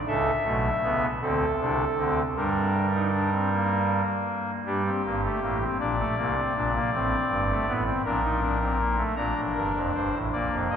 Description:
classical, baroque-style 3-part fugue for pipe organ; 53 BPM (dotted quarters); 6/8; straight; G minor; A4 = 440 Hz
pipe organ, soft reed; solo; 0.1-10.8 s; F1 to Bb5; -23 LUFS; equal
wet church reverb, RT60 4.0 s; recorded in a church or concert hall; -23 LUFS; side -8 dB against mid
0.0-4.7 A section; 4.7-9.2 B section; 9.2-10.8 C section
0.1 A; 1.2 D5; 2.4 Gm; 5.8 Bbmaj9; 6.9 Gsus24; 8.0 Bbmaj9; 9.2 Bb

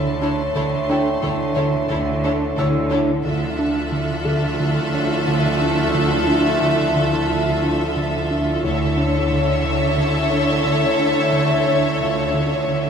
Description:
cinematic, suspense film score; 89 BPM; 4/4; straight; D harmonic minor; A4 = 440 Hz
clear trombone section; sustained chords; 0.0-12.9 s; E3 to A3; -26 LUFS; right 2 dB
warm French horn section; sustained chords; 0.0-12.9 s; D4 to C#5; -26 LUFS; left 1 dB
rubbery square bass; riff; 0.0-12.9 s; D3 to D4; -24 LUFS; right 2 dB
clear symphonic double bass section; bass; 0.0-12.9 s; D2; -25 LUFS; right 2 dB
rich symphonic cello section; bass; 0.0-12.9 s; D3; -26 LUFS; right 1 dB
felt-muted upright piano; texture; 0.0-12.9 s; E4 to E6; -31 LUFS; left 3 dB
rich studio violin section; texture; 0.0-12.9 s; A5 to G#6; -32 LUFS; left 3 dB
clear studio violin section; melody; 0.2-12.9 s; C#5 to E5; -26 LUFS; left 4 dB
clear symphonic violin section; second line; 0.2-12.9 s; A4; -30 LUFS; left 1 dB
bright symphonic viola section; accompaniment; 0.2-12.9 s; E4 to E5; -27 LUFS; equal
wet recital hall reverb, RT60 1.7 s; recorded in a church or concert hall; -17 LUFS; side -7 dB against mid
0.0-12.9 A section
0.0 A/D; 3.2 Dmadd9; 8.6 A/D

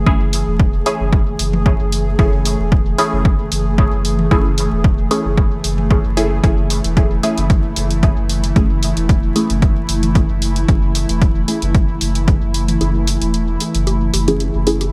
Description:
dub techno; 113 BPM; 4/4; swing 53% on 16ths; F# minor; A4 = 440 Hz
airy breathy pad; sustained chords; 0.0-14.9 s; E3 to G#4; -25 LUFS; equal; chorus, sidechain pumping
soft dub sub bass; bass; 0.0-14.9 s; E1 to F#1; -22 LUFS; equal; sidechain pumping
filtered dub chord stab; stabs; 0.1-14.8 s; A3 to G#4; -24 LUFS; equal; phaser, sidechain pumping, dub echo
electronic kick drum; drums; 0.1-12.4 s; -17 LUFS; equal; overdrive
electronic hi-hat; drums; 0.3-14.9 s; -26 LUFS; equal; overdrive
electronic toms and bongos; percussion; 1.5-14.9 s; -27 LUFS; equal; sidechain pumping on toms, sidechain pumping on perc
digital ambience; vinyl crackle; -16 LUFS; mono
0.0-14.9 A section
filter sweep on synth stab 0.0-14.9; kick drops out 12.8-14.9
0.0 F#m9

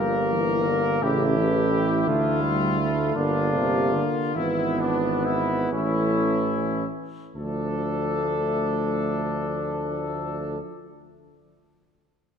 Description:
classical, hymn-like piece for brass band; 35-57 BPM (dotted quarters); 6/8; rubato; D minor; A4 = 440 Hz
bright trumpet section; melody; 0.0-10.6 s; D4 to Bb4; -29 LUFS; left 7 dB
clear flugelhorn; second line; 0.0-10.6 s; Bb3 to E4; -29 LUFS; right 5 dB
bright trombone section; accompaniment; 0.0-10.6 s; G3 to B3; -29 LUFS; left 2 dB
mellow euphonium; accompaniment; 0.0-10.6 s; C3 to G3; -29 LUFS; right 2 dB
warm tuba; bass; 0.0-10.6 s; G1 to D2; -28 LUFS; right 1 dB
moderate concert hall reverb, RT60 2.1 s; minimal, uncompressed stereo recording; -22 LUFS; side -7 dB against mid
0.0-7.4 A section; 7.4-12.4 B section
slowing down 1.0-7.4
0.0 Gm; 1.0 A7; 2.1 Dm; 3.2 Gm; 4.4 E7/G#; 5.7 A; 7.4 Dm

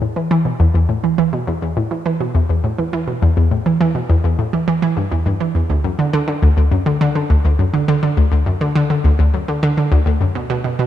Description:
ambient; 103 BPM; 4/4; straight; E minor; A4 = 441 Hz
analog pluck; solo; 0.0-10.8 s; D2 to E3; -14 LUFS; equal; chorus, ping-pong delay
light reverb; dark, warm production; -14 LUFS; side -11 dB against mid
0.0-10.9 A section

